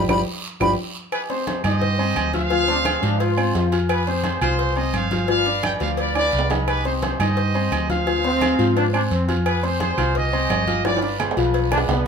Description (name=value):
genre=latin, salsa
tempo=173 BPM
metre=4/4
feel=straight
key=C harmonic minor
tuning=A4 = 440 Hz
part: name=bright silver concert flute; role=melody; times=0.0-0.7 s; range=B5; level=-23 LUFS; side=equal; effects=none
part: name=dark concert grand piano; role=accompaniment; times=0.0-12.0 s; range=F3 to F6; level=-25 LUFS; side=left 4 dB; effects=none
part: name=hollow-body short-scale fingered electric bass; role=bass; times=0.0-12.1 s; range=G1 to Ab2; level=-23 LUFS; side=right 1 dB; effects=none
part: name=claves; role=percussion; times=0.1-11.9 s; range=none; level=-34 LUFS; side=right 9 dB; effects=none
part: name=congas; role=percussion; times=0.1-12.0 s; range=none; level=-30 LUFS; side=equal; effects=none
part: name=cowbell and bongos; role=percussion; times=0.1-12.1 s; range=none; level=-32 LUFS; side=left 6 dB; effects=none
part: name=guiro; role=percussion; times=0.1-12.1 s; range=none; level=-36 LUFS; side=right 5 dB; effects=none
part: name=timbales and agogo bells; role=percussion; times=0.1-12.0 s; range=none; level=-28 LUFS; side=right 5 dB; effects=none
part: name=clear trumpet section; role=melody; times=1.1-12.1 s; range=D4 to G5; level=-24 LUFS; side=right 1 dB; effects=none
part: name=bright trombone section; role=second line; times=2.7-3.8, 8.2-9.4, 11.7-12.1 s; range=B3 to F4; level=-23 LUFS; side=left 1 dB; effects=none
room=moderate studio reverb, RT60 0.8 s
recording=minimal, uncompressed stereo recording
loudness=-18 LUFS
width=side -6 dB against mid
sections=0.0-1.1 A section; 1.1-12.1 B section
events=band accent 0.0-1.1; flute solo 0.0-1.1; drum fill 0.1-1.1, 6.2-6.7, 10.8-12.1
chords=0.0 G7(no3); 1.1 Cm; 2.5 Dm7b5; 3.9 Fmadd9; 5.3 G7; 6.7 Cm; 8.1 Dm7b5; 9.5 Fmadd9; 10.8 G7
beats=0.09 0.43 0.78 | 1.13 1.47 1.82 2.16 | 2.51 2.86 3.20 3.55 | 3.90 4.24 4.59 4.94 | 5.29 5.63 5.98 6.33 | 6.68 7.03 7.37 7.72 | 8.07 8.42 8.76 9.11 | 9.46 9.81 10.15 10.50 | 10.85 11.20 11.54 11.89